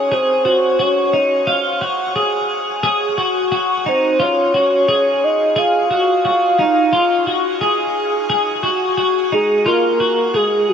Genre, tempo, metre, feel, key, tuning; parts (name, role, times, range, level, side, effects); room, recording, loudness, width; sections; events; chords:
dream pop; 88 BPM; 4/4; straight; A4 = 441 Hz
soft octave-layered synth lead; melody; 0.0-10.7 s; Gb4 to F5; -17 LUFS; equal; chorus, tremolo, digital delay
twelve-string electric guitar; arpeggios; 0.0-10.7 s; Eb4 to Ab4; -17 LUFS; left 1 dB; lush chorus, digital delay
wet shimmer reverb, RT60 7.8 s; -14 LUFS; side -7 dB against mid
0.0-10.7 A section
0.0 Ebmadd11